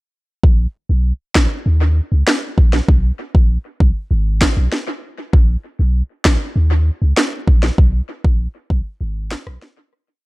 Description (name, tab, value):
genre	dancehall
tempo	98 BPM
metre	4/4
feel	straight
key	unclear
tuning	A4 = 440 Hz
part	punchy sub bass	bass	0.4-9.6 s	Ab1 to Eb2	-15 LUFS	equal	none
part	afro-pop drum kit	drums	0.4-9.8 s	handclaps, kick drum, rim click, snare drum	-14 LUFS	equal	vintage 12-bit sampler grit, analog delay
room	little or no reverb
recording	echo-heavy mix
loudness	-14 LUFS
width	side -22 dB against mid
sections	0.4-10.2 verse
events	fade-out 7.8-10.2; break 9.0-10.2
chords	none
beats	| 0.44 1.05 1.66 2.27 | 2.88 3.50 4.11 4.72 | 5.33 5.95 6.56 7.17 | 7.78 8.39 9.01 9.62